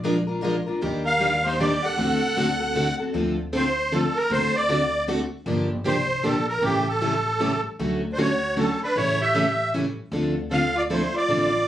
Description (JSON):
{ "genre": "acoustic string swing (jazz manouche)", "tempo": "155 BPM", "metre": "3/4", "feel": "swing 62% on 8ths", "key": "D minor from 3.1 s", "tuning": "A4 = 441 Hz", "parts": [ { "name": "picked plugged-in steel-string acoustic guitar", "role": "accompaniment", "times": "0.0-11.5 s", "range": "D3 to Bb4", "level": "-27 LUFS", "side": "right 2 dB", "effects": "none" }, { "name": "picked steel-string acoustic guitar", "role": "accompaniment", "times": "0.0-11.5 s", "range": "C#3 to Bb4", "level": "-28 LUFS", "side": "left 4 dB", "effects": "none" }, { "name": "upright bass", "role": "bass", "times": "0.0-11.7 s", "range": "G1 to Eb2", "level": "-32 LUFS", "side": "equal", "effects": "none" }, { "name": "bright soprano saxophone", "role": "second line", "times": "1.0-3.0, 8.1-11.7 s", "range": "C#4 to Bb4", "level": "-30 LUFS", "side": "right 2 dB", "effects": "none" }, { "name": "musette accordion", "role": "melody", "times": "1.1-11.7 s", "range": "G4 to F#5", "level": "-23 LUFS", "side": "right 1 dB", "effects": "none" } ], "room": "moderate club reverb, RT60 0.8 s", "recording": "recorded on a phone in the room, studio ambience, compression", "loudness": "-21 LUFS", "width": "side -12 dB against mid", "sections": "0.0-3.1 A section; 3.1-11.7 B section", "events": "none", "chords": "0.0 Bb7; 0.8 Ebmaj7; 2.0 D7; 3.1 Dm7; 4.3 D7; 5.5 Gm7; 6.6 A7; 7.8 Dmaj7; 9.0 A7; 10.1 Dm7" }